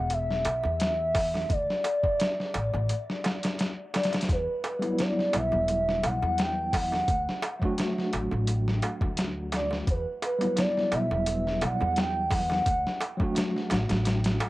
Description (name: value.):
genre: trip hop.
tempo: 86 BPM.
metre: 4/4.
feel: swing 54% on 16ths.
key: unclear.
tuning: A4 = 436 Hz.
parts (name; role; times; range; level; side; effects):
pure breathy sine lead; melody; 0.0-13.0 s; B4 to G5; -29 LUFS; equal; lush chorus, cassette tape, dub echo.
upright bass; bass; 0.0-14.4 s; E1 to E2; -30 LUFS; equal; none.
dusty soul sampler-style drum kit; drums; 0.1-14.5 s; hi-hat, kick drum, snare drum; -30 LUFS; equal; overdrive, cassette tape.
darbuka; percussion; 0.1-14.5 s; none; -36 LUFS; right 2 dB; none.
bright tine electric piano; accompaniment; 4.8-14.5 s; F#3 to F#4; -31 LUFS; equal; medium stereo tremolo, vintage 12-bit sampler grit, cassette tape.
room: little or no reverb.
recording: home recording on cassette.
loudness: -25 LUFS.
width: side -18 dB against mid.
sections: 0.0-14.5 A section.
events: none.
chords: 0.0 N.C.; 1.5 D5; 4.3 Emadd9; 7.1 D; 9.9 Emadd9; 12.7 D.